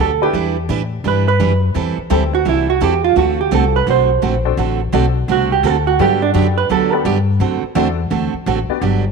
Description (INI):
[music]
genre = country, western swing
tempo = 170 BPM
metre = 4/4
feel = swing 64% on 8ths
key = unclear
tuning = A4 = 442 Hz
[part]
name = vintage hollow-body jazz guitar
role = second line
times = 0.0-7.0 s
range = D4 to C5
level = -17 LUFS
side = right 8 dB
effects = none
[part]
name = picked steel-string acoustic guitar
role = accompaniment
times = 0.0-9.0 s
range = D3 to B4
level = -19 LUFS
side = right 11 dB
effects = none
[part]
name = upright bass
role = bass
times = 0.0-9.1 s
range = G1 to A2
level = -18 LUFS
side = left 3 dB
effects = none
[part]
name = honky-tonk upright piano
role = accompaniment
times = 0.2-2.3, 4.5-8.8 s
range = B3 to D5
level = -23 LUFS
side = left 14 dB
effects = none
[sound]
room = moderate plate reverb, RT60 2.6 s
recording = 1960s-style stereo with parts hard left and right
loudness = -13 LUFS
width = side -4 dB against mid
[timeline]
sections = 0.0-9.1 A section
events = hollow-body jazz guitar solo 0.0-9.1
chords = 0.3 Em9; 1.8 Am7; 3.2 D7; 6.0 Gmaj9; 7.4 D9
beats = | 0.34 0.69 1.05 1.40 | 1.75 2.11 2.46 2.81 | 3.17 3.52 3.87 4.23 | 4.58 4.93 5.29 5.64 | 5.99 6.34 6.70 7.05 | 7.41 7.76 8.11 8.46 | 8.82